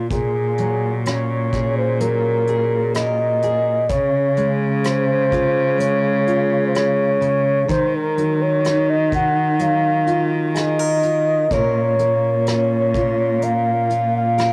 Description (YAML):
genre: acoustic folk-pop ballad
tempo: 63 BPM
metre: 4/4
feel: straight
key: Db major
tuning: A4 = 440 Hz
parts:
  - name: fingerpicked steel-string acoustic guitar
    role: accompaniment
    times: 0.0-14.5 s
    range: Bb2 to Bb4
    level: -26 LUFS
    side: equal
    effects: cassette tape
  - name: warm cello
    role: bass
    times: 0.0-14.5 s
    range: Bb2 to Eb3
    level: -24 LUFS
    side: equal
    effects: none
  - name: breathy flugelhorn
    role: melody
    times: 0.1-14.5 s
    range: Ab4 to Gb5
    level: -21 LUFS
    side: equal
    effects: cassette tape
  - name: soft brush drum kit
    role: drums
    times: 0.1-14.5 s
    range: hi-hat, kick drum, rim click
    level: -30 LUFS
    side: equal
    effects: cassette tape
room: light reverb, studio reverb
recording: home recording on cassette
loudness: -19 LUFS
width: mono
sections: 0.0-14.5 A section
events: none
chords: 0.1 Gbadd9/Bb; 3.9 Db; 7.7 Ebmadd9; 11.5 Bbm